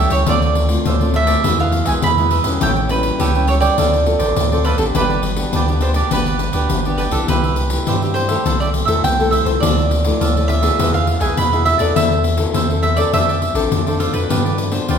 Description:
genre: samba and choro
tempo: 103 BPM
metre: 4/4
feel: straight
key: unclear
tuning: A4 = 440 Hz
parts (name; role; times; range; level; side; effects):
- mandolin; melody; 0.0-15.0 s; A4 to B5; -20 LUFS; right 3 dB; none
- cavaquinho; accompaniment; 0.0-15.0 s; D4 to G5; -24 LUFS; right 5 dB; none
- nylon-string guitar; accompaniment; 0.0-15.0 s; G2 to A4; -22 LUFS; left 3 dB; none
- punchy sub bass; bass; 0.0-15.0 s; G1 to G2; -19 LUFS; equal; none
- pandeiro; percussion; 0.1-15.0 s; none; -20 LUFS; left 3 dB; none
room: wet recital hall reverb, RT60 1.6 s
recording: recorded in a church or concert hall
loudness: -14 LUFS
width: side -7 dB against mid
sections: 0.0-15.0 A section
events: none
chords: 0.3 Dm7; 1.4 E; 2.6 A7; 3.8 Dm7; 5.0 G; 7.3 C; 8.5 Am/C; 9.6 Dmadd9; 10.8 E; 12.0 Am/E; 13.1 Dm7; 14.3 G7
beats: | 0.28 0.86 1.45 2.03 | 2.62 3.20 3.79 4.37 | 4.95 5.54 6.12 6.71 | 7.29 7.87 8.46 9.04 | 9.63 10.21 10.79 11.38 | 11.96 12.55 13.13 13.71 | 14.30 14.88

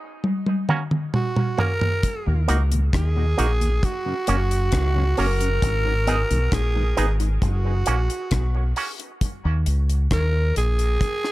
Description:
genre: dub reggae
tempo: 67 BPM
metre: 4/4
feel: straight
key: F# major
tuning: A4 = 441 Hz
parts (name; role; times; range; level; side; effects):
- deep reggae drum kit; drums; 0.2-11.3 s; hi-hat, kick drum, rim click, toms; -24 LUFS; equal; none
- electric guitar with an envelope filter; accompaniment; 0.7-8.9 s; A#3 to G#4; -30 LUFS; right 5 dB; tremolo, high-pass filter, dub echo
- growling tenor saxophone; melody; 1.1-11.3 s; F#4 to A#4; -27 LUFS; right 1 dB; dub echo
- mellow tonewheel organ; accompaniment; 2.3-11.3 s; D#2 to G#4; -32 LUFS; left 2 dB; slow rotary speaker, high-pass filter, dub echo
- deep dub fingered electric bass; bass; 2.3-11.0 s; F#1 to D#2; -20 LUFS; equal; none
room: little or no reverb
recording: none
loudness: -19 LUFS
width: side -17 dB against mid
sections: 0.0-11.3 A section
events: break 0.0-2.0; drum fill 0.2-2.0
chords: 0.2 F#; 2.0 D#m; 3.8 F#; 5.6 G#m; 7.4 F#; 9.2 D#m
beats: 0.23 1.13 | 2.03 2.93 3.83 4.72 | 5.62 6.52 7.42 8.31 | 9.21 10.11 11.00

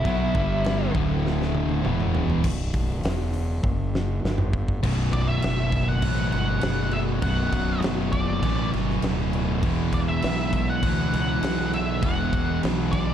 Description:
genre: stoner and doom metal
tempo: 100 BPM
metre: 4/4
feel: straight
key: B minor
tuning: A4 = 440 Hz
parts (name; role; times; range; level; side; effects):
- octave-fuzz lead guitar; melody; 0.0-0.9, 5.1-13.1 s; E4 to F#5; -29 LUFS; equal; distortion, analog delay
- fuzz guitar; riff; 0.0-13.1 s; B1 to B3; -29 LUFS; left 9 dB; distortion
- fuzz fingered electric bass; bass; 0.0-13.1 s; B0 to D2; -27 LUFS; equal; overdrive
- big rock drum kit; drums; 0.0-13.1 s; crash cymbal, hi-hat, kick drum, snare drum, toms; -28 LUFS; equal; none
- fuzz guitar; riff; 0.1-13.1 s; B1 to B3; -28 LUFS; right 9 dB; distortion
- heavy high-gain guitar; riff; 0.1-13.1 s; B1 to B3; -32 LUFS; equal; distortion
room: studio reverb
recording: dark, warm production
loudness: -22 LUFS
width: side -10 dB against mid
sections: 0.0-2.4 A section; 2.4-4.8 B section; 4.8-13.1 C section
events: lead electric guitar solo 0.0-2.4; drum fill 1.2-2.4, 3.6-4.8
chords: 0.4 G5; 1.0 D5; 1.8 E5; 2.4 B5; 4.8 Bm; 9.6 E5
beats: | 0.06 0.65 1.25 1.85 | 2.44 3.04 3.64 4.24 | 4.84 5.44 6.04 6.63 | 7.23 7.83 8.43 9.03 | 9.63 10.23 10.83 11.43 | 12.03 12.63

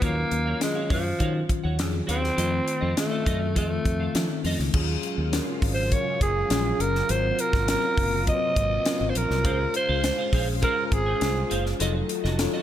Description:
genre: polished 1980s jazz-funk pop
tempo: 102 BPM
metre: 4/4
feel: straight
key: unclear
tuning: A4 = 440 Hz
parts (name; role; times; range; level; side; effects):
- growling alto saxophone; melody; 0.0-11.5 s; F3 to Eb5; -26 LUFS; right 1 dB; none
- mellow tine electric piano; accompaniment; 0.0-12.6 s; Eb3 to C5; -30 LUFS; left 3 dB; medium stereo tremolo, lush chorus
- clean electric guitar; riff; 0.0-4.6, 9.4-12.6 s; F4 to Ab5; -34 LUFS; right 3 dB; analog chorus
- fingered electric bass; bass; 0.0-12.5 s; F1 to F3; -27 LUFS; equal; none
- crisp fusion drum kit; drums; 0.0-12.5 s; crash cymbal, hi-hat, kick drum, snare drum; -28 LUFS; equal; gated reverb
- phased string machine; sustained chords; 4.7-12.6 s; C3 to C5; -36 LUFS; right 2 dB; ensemble chorus, phaser
room: light reverb, studio ambience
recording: none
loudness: -22 LUFS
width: side -11 dB against mid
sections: 0.0-4.7 A section; 4.7-12.6 B section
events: none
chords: 0.0 Ebm9; 2.4 F7; 4.7 Ebm11; 7.1 Ab13; 9.5 Dbmaj7; 11.8 F7b9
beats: | 0.02 0.61 1.20 1.79 | 2.38 2.97 3.56 4.15 | 4.74 5.33 5.92 6.51 | 7.10 7.68 8.27 8.86 | 9.45 10.04 10.63 11.22 | 11.80 12.39

